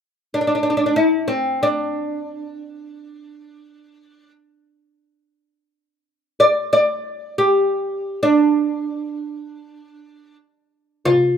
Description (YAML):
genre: Arabic maqam ensemble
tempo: free time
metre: none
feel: none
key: D maqam bayati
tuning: A4 = 445 Hz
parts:
  - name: oud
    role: melody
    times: 0.3-11.4 s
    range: C4 to D5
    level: -17 LUFS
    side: equal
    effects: plate reverb
  - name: darbuka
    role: percussion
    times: 11.1-11.3 s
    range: none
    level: -22 LUFS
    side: left 1 dB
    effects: none
room: moderate small room reverb, RT60 0.5 s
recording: rough home demo mix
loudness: -17 LUFS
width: side -8 dB against mid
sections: 0.0-11.1 A section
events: none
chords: none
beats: free time